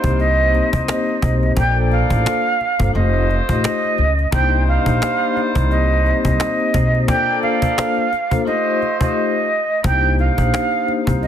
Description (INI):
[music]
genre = hip hop, boom-bap hip-hop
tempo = 87 BPM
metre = 4/4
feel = swing 58% on 16ths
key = C dorian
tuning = A4 = 442 Hz
[part]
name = vibraphone with medium mallets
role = accompaniment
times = 0.0-11.3 s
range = A3 to C5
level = -22 LUFS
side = left 5 dB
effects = high-pass filter, low-pass filter
[part]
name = warm horn section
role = stabs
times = 0.0-9.5 s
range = G3 to D5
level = -27 LUFS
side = equal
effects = high-pass filter, low-pass filter, ping-pong delay
[part]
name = upright bass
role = bass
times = 0.0-11.3 s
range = F1 to Db2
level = -18 LUFS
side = equal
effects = none
[part]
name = cajon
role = drums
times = 0.0-11.3 s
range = none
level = -22 LUFS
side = equal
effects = none
[part]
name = breathy jazz flute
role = melody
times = 0.2-11.3 s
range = Eb5 to G5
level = -19 LUFS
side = right 2 dB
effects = high-pass filter, low-pass filter, ping-pong delay
[sound]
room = light reverb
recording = dense, heavily limited modern master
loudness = -15 LUFS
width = side -9 dB against mid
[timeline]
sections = 0.0-9.8 A section; 9.8-11.3 A section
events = none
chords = 0.0 Cm7; 1.6 Bbmaj7; 2.9 F7; 4.3 Cm7; 7.1 Bbmaj7; 8.5 F7; 9.8 Cm7